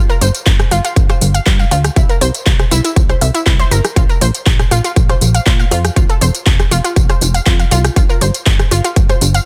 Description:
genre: progressive house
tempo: 120 BPM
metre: 4/4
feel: straight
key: unclear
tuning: A4 = 438 Hz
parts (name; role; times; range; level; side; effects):
- plucky analog bass; bass; 0.0-9.4 s; F1 to Bb2; -17 LUFS; equal; sidechain pumping
- analog pluck; arpeggios; 0.1-9.4 s; E3 to F6; -22 LUFS; equal; chorus, sidechain pumping, delay
- house drum kit; drums; 0.1-9.4 s; handclaps, hi-hat, rim click, tambourine; -21 LUFS; equal; none
- electronic kick drum; drums; 0.5-9.1 s; none; -14 LUFS; equal; none
room: digital ambience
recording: dense, heavily limited modern master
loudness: -13 LUFS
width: mono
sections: 0.0-9.5 A section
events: none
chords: 0.0 G7(no3); 2.0 C; 4.0 Bb5; 6.0 F5; 8.0 G7(no3)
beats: 0.46 0.96 1.46 | 1.96 2.46 2.96 3.46 | 3.96 4.46 4.96 5.46 | 5.96 6.46 6.96 7.46 | 7.96 8.46 8.96

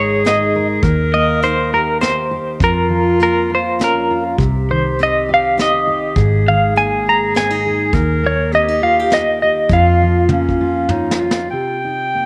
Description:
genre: acoustic folk-pop ballad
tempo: 101 BPM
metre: 3/4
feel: straight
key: unclear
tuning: A4 = 439 Hz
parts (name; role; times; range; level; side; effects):
- semi-hollow electric guitar; melody; 0.0-10.9 s; Bb4 to Bb5; -18 LUFS; equal; tremolo
- clear clarinet; second line; 0.0-12.3 s; Db4 to G5; -23 LUFS; equal; tape echo
- fingerpicked steel-string acoustic guitar; accompaniment; 0.0-12.3 s; F2 to Bb4; -23 LUFS; equal; none
- vintage muted fingered electric bass; bass; 0.0-11.5 s; Ab1 to F2; -22 LUFS; equal; none
- vintage brush drum kit; drums; 0.2-11.4 s; hi-hat, kick drum, snare drum, toms; -23 LUFS; equal; none
room: moderate spring reverb, RT60 2.4 s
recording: none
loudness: -15 LUFS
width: mono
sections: 0.0-11.5 A section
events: drum fill 10.3-11.5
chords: 0.0 Absus2; 0.8 Eb; 2.6 Bbm/F; 4.4 Cm; 6.2 Absus2; 7.9 Eb; 9.7 Bbm/F; 11.5 Cm7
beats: 0.24 | 0.82 1.41 2.01 | 2.60 3.19 3.78 | 4.38 4.97 5.57 | 6.16 6.75 7.35 | 7.93 8.52 9.11 | 9.70 10.29 10.89 | 11.50 12.10

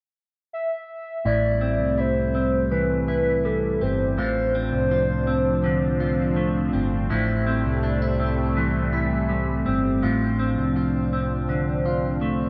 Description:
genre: dream pop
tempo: 82 BPM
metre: 4/4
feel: straight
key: A minor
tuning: A4 = 440 Hz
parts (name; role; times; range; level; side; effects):
- warbly nostalgic lead; melody; 0.5-6.7 s; A4 to E5; -27 LUFS; equal; chorus, tremolo
- electric guitar with an envelope filter; arpeggios; 1.2-12.5 s; A2 to F4; -27 LUFS; equal; lush chorus, tape echo
- phased analog pad; sustained chords; 1.5-12.5 s; F3 to D4; -29 LUFS; equal; phaser, chorus
- picked electric bass; bass; 1.3-12.5 s; G1 to C2; -29 LUFS; equal; none
room: wet spring reverb, RT60 2.5 s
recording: none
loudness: -23 LUFS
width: mono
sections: 0.0-1.2 A section; 1.2-12.5 B section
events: none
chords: 0.0 N.C.; 1.2 Am7; 4.2 Dm7/A; 7.1 Am7; 10.0 Dm7/A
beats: 0.52 | 1.25 1.98 2.71 3.44 | 4.17 4.91 5.64 6.37 | 7.10 7.83 8.56 9.30 | 10.03 10.76 11.49 12.22

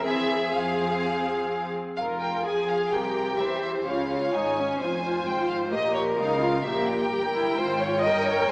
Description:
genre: quick classical-period movement for string orchestra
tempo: 128 BPM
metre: 4/4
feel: straight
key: F minor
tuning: A4 = 442 Hz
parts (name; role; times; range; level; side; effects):
- clear chamber violin section; melody; 0.0-8.5 s; Db5 to Ab5; -30 LUFS; equal; none
- warm chamber violin section; second line; 0.0-8.5 s; F4 to Eb5; -28 LUFS; equal; none
- warm chamber viola section; accompaniment; 0.0-8.5 s; C4 to Bb4; -27 LUFS; equal; none
- dark symphonic cello section; bass; 0.0-8.5 s; F2 to F3; -34 LUFS; equal; none
- rich studio double bass section; bass; 0.0-8.5 s; F1 to F2; -39 LUFS; equal; none
room: wet scoring stage reverb, RT60 1.7 s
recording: small speaker sound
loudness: -23 LUFS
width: side -28 dB against mid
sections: 0.0-2.0 A section; 2.0-8.5 B section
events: none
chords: 0.0 Fm; 2.9 C7; 3.9 Dbmaj7; 5.7 Gdim/Bb; 6.6 Gm6; 7.6 Fm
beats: | 0.04 0.53 1.01 1.50 | 1.98 2.45 2.92 3.39 | 3.86 4.33 4.80 5.26 | 5.72 6.18 6.64 7.11 | 7.57 8.03 8.49

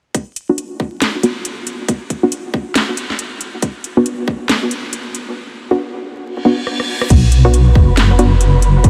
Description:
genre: deep dubstep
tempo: 138 BPM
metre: 4/4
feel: swing 60% on 16ths, half-time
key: B minor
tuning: A4 = 437 Hz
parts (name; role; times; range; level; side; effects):
- electronic kick drum; drums; 0.1-4.4, 7.1-8.9 s; none; -14 LUFS; equal; high-pass filter on kick, high-pass filter on room
- garage drum kit; drums; 0.1-8.9 s; crash cymbal, hi-hat, rim click, snare drum; -22 LUFS; equal; none
- filtered dub chord stab; stabs; 0.5-8.3 s; B3 to F#4; -21 LUFS; equal; chorus, dub echo
- reverse cymbal; sound effects; 6.4-7.1 s; none; -29 LUFS; equal; none
- deep soft wobble bass; bass; 7.1-8.9 s; F#1 to B1; -12 LUFS; equal; chorus
- wind-like tuned noise texture; texture; 7.4-8.9 s; B4; -27 LUFS; equal; built-in reverb
room: moderate huge ambient reverb, RT60 6.7 s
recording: dreamy mix soaked in reverb, vinyl crackle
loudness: -15 LUFS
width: mono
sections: 0.1-7.1 A section; 7.1-8.9 B section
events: filter sweep on synth stab 0.1-7.1; reverse cymbal 6.4-7.1; drum fill 6.7-7.1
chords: 0.1 Bm; 7.1 B5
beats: | 0.15 0.58 1.02 1.45 | 1.89 2.32 2.75 3.19 | 3.62 4.06 4.49 4.93 | 5.36 5.80 6.23 6.67 | 7.10 7.54 7.97 8.41 | 8.84

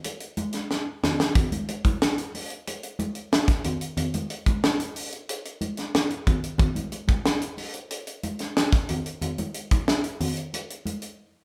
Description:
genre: funk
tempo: 92 BPM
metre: 4/4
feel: straight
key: none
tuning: none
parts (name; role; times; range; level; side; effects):
- tight funk drum kit; drums; 0.0-11.2 s; hi-hat, kick drum, snare drum; -27 LUFS; equal; none
- congas; percussion; 0.1-11.0 s; none; -33 LUFS; equal; none
room: moderate large studio reverb, RT60 1.1 s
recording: band playing live in one room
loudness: -27 LUFS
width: mono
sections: 0.0-1.4 A section; 1.4-11.4 B section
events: drum fill 0.7-1.4; break 11.2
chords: none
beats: 0.05 0.70 | 1.35 2.01 2.66 3.32 | 3.97 4.63 5.28 5.94 | 6.59 7.25 7.91 8.56 | 9.22 9.88 10.53

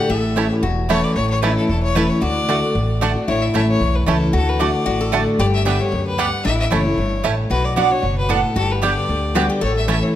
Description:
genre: bluegrass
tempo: 227 BPM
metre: 4/4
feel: swing 54% on 8ths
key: unclear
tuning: A4 = 441 Hz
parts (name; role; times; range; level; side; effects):
- clear fiddle; melody; 0.0-10.1 s; A4 to F#5; -24 LUFS; left 3 dB; none
- lap resonator guitar; second line; 0.0-10.2 s; D4 to A4; -25 LUFS; left 4 dB; none
- picked steel-string acoustic guitar; accompaniment; 0.0-10.1 s; E2 to G4; -21 LUFS; left 1 dB; none
- upright bass; bass; 0.1-10.0 s; E1 to D2; -22 LUFS; equal; none
- bluegrass banjo; melody; 0.4-9.9 s; G3 to E4; -28 LUFS; right 6 dB; none
- mandolin; stabs; 0.4-10.0 s; A3 to A5; -24 LUFS; right 7 dB; none
room: moderate recital hall reverb, RT60 1.8 s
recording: none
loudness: -16 LUFS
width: side -12 dB against mid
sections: 0.0-3.3 A section; 3.3-10.2 B section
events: none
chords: 0.1 A; 2.2 D; 3.3 A; 4.3 D; 5.4 G; 6.5 A; 7.5 Bm; 8.6 G; 9.6 A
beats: | 0.10 0.37 0.63 0.90 | 1.16 1.43 1.69 1.96 | 2.22 2.48 2.75 3.01 | 3.28 3.54 3.81 4.07 | 4.34 4.60 4.86 5.13 | 5.39 5.66 5.92 6.19 | 6.45 6.71 6.98 7.24 | 7.51 7.77 8.04 8.30 | 8.56 8.83 9.09 9.36 | 9.62 9.88 10.15

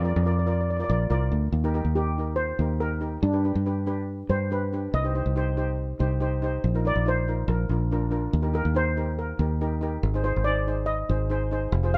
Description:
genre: calypso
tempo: 141 BPM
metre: 4/4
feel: straight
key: Eb major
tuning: A4 = 440 Hz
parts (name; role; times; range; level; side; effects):
- steel pan; melody; 0.0-12.0 s; D4 to F5; -32 LUFS; equal; none
- steel pan; accompaniment; 0.0-12.0 s; D4 to D5; -33 LUFS; equal; none
- fingered electric bass; bass; 0.0-12.0 s; F1 to G2; -28 LUFS; equal; none
room: light reverb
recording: none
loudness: -26 LUFS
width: mono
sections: 0.0-1.5 A section; 1.5-12.0 B section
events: steel pan solo 1.5-12.0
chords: 0.0 Bb; 1.5 Eb; 3.2 G; 4.9 Cm; 6.6 Bbsus4; 7.5 Bb; 8.3 Eb; 10.0 Ab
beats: 0.26 0.69 1.11 | 1.53 1.96 2.38 2.81 | 3.23 3.66 4.08 4.51 | 4.93 5.36 5.79 6.21 | 6.64 7.06 7.49 7.91 | 8.34 8.76 9.19 9.61 | 10.04 10.46 10.88 11.31 | 11.73

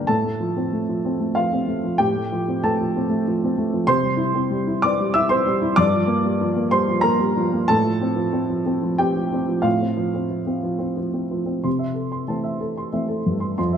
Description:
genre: neoclassical minimalist piano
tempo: 94 BPM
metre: 3/4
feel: rubato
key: unclear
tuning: A4 = 440 Hz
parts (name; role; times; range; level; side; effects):
- warm upright piano; solo; 0.0-13.8 s; F2 to E6; -19 LUFS; equal; none
room: moderate recital hall reverb, RT60 1.7 s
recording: dark, warm production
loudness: -19 LUFS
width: side -8 dB against mid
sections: 0.0-11.7 A section; 11.7-13.8 B section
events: none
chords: 0.1 F/A; 3.9 C; 5.8 Gm7; 7.7 F/A; 11.7 C6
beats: | 0.10 0.74 1.38 | 2.01 2.64 3.27 | 3.90 4.53 5.16 | 5.79 6.43 7.07 | 7.71 8.34 8.99 | 9.65 10.32 10.99 | 11.66 12.30 12.94 | 13.58

